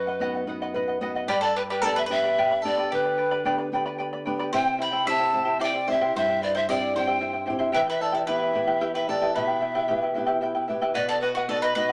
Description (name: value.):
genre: andean folk.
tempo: 74 BPM (dotted quarters).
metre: 6/8.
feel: straight.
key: E minor.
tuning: A4 = 440 Hz.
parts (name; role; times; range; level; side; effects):
polished pan flute; melody; 0.0-11.9 s; B4 to B5; -28 LUFS; equal; none.
bowl-back mandolin; second line; 0.0-11.9 s; F#4 to G5; -32 LUFS; equal; none.
charango; accompaniment; 0.0-11.9 s; E4 to B5; -30 LUFS; equal; none.
nylon-string guitar; accompaniment; 0.0-11.9 s; F#2 to D#5; -34 LUFS; equal; none.
room: wet studio ambience, RT60 0.5 s.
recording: none.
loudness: -25 LUFS.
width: mono.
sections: 0.0-11.0 A section.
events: nylon-string guitar fill 0.5-1.3.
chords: 0.0 B; 1.3 G; 4.5 C; 7.8 Em; 11.0 B.